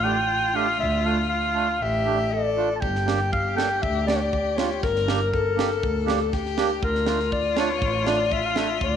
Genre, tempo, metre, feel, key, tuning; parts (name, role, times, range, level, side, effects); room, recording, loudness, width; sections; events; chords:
klezmer; 120 BPM; 4/4; straight; D harmonic minor; A4 = 440 Hz
growling clarinet; melody; 0.0-9.0 s; Bb4 to A5; -25 LUFS; equal; slapback echo
rich violin; second line; 0.0-9.0 s; F4 to Bb4; -28 LUFS; left 9 dB
accordion; accompaniment; 0.0-8.7 s; A3 to A4; -29 LUFS; right 10 dB
dark double bass; bass; 0.0-9.0 s; G1 to D2; -28 LUFS; equal
tight funk drum kit; drums; 2.8-8.9 s; kick drum, snare drum; -30 LUFS; right 2 dB
moderate echo chamber reverb, RT60 1.6 s, small room ambience; 1960s-style stereo with parts hard left and right; -21 LUFS; side -8 dB against mid
0.0-9.0 A section
0.0 Dm; 2.8 Gm; 6.8 Dm